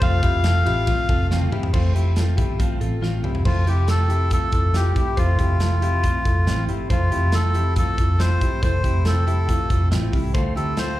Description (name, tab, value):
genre	jangly indie pop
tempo	139 BPM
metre	4/4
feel	straight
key	F major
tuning	A4 = 440 Hz
part	melodica	melody	0.0-11.0 s	F4 to F5	-25 LUFS	left 1 dB	slapback echo, ping-pong delay
part	vibraphone with medium hard mallets	second line	0.0-1.3 s	F4	-33 LUFS	left 1 dB	slapback echo
part	fingerpicked steel-string acoustic guitar	accompaniment	0.0-11.0 s	D3 to F4	-29 LUFS	right 5 dB	slapback echo
part	direct-recorded clean electric guitar	arpeggios	0.0-11.0 s	C4 to C5	-30 LUFS	left 8 dB	slapback echo
part	vintage muted picked electric bass	bass	0.0-11.0 s	F1 to D2	-20 LUFS	equal	none
part	modern studio drum kit	drums	0.0-10.9 s	crash cymbal, hi-hat, kick drum, ride cymbal, snare drum, toms	-23 LUFS	equal	none
room	small room reverb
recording	live gig heard through the venue's PA, club reverb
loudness	-18 LUFS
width	side -15 dB against mid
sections	0.0-1.7 A section; 1.7-3.5 B section; 3.5-11.0 C section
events	drum fill 1.3-1.7, 3.0-3.5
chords	0.0 F; 10.3 Dm7